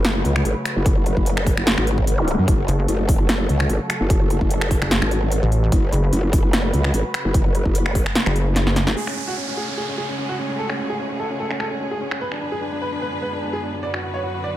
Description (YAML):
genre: heavy wobble dubstep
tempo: 148 BPM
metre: 4/4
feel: swing 53% on 16ths, half-time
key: F# minor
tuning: A4 = 440 Hz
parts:
  - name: bright symphonic string section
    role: sustained chords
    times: 0.0-14.6 s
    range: F#2 to B4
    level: -29 LUFS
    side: equal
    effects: sidechain pumping, low-pass filter
  - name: growl bass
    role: bass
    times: 0.0-8.9 s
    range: F#1 to F#2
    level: -20 LUFS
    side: equal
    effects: chorus, overdrive
  - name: big-room dance drum kit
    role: drums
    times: 0.0-14.0 s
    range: finger snaps, hi-hat, snare drum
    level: -23 LUFS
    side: equal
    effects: low-pass filter on hats, low-pass filter on cymbals, low-pass filter on snare, low-pass filter on room
  - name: electronic kick drum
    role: drums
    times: 0.9-8.0 s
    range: none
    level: -20 LUFS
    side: equal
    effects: none
  - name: zap and downlifter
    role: sound effects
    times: 2.2-2.3, 9.0-12.2 s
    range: none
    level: -30 LUFS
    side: right 1 dB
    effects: none
  - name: pulsing pluck wobble bass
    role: bass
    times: 2.7-8.9 s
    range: F#1 to A1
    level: -18 LUFS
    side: equal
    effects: chorus, overdrive
  - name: clear grand piano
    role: melody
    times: 9.0-14.6 s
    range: C#4 to D5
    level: -26 LUFS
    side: right 1 dB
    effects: digital delay
room: digital ambience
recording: none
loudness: -18 LUFS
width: side -14 dB against mid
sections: 0.0-9.0 A section; 9.0-14.6 B section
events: drop 0.0-9.0; drum fill 8.7-9.0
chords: 0.0 F#m; 9.0 F#madd9; 12.2 G#dim/F#; 13.8 Bm/F#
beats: 0.05 0.45 | 0.86 1.26 1.67 2.07 | 2.48 2.88 3.29 3.69 | 4.10 4.51 4.91 5.32 | 5.72 6.13 6.53 6.94 | 7.34 7.75 8.15 8.56 | 8.96 9.37 9.78 10.18 | 10.59 10.99 11.40 11.80 | 12.21 12.61 13.02 13.43 | 13.83 14.23